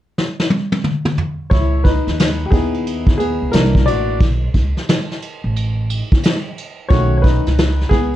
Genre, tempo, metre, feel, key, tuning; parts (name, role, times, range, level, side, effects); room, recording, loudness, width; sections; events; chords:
hip hop, jazz-hop; 89 BPM; 4/4; swing 64% on 16ths; C# minor; A4 = 438 Hz
vintage brush drum kit; drums; 0.2-8.1 s; hi-hat, kick drum, ride cymbal, snare drum, toms; -16 LUFS; equal
warm upright piano; accompaniment; 1.5-8.2 s; D#3 to D5; -19 LUFS; left 2 dB
upright bass; bass; 1.5-8.2 s; A1 to D#2; -18 LUFS; right 1 dB
moderate small room reverb, RT60 0.5 s; cassette tape; -14 LUFS; side -13 dB against mid
0.0-1.5 A section; 1.5-8.2 B section
drum fill 0.2-1.5; upright piano solo 1.5-8.2; break 4.2-6.9
0.0 N.C.; 1.5 C#m9; 3.5 C9; 4.2 Bsus2; 6.9 B7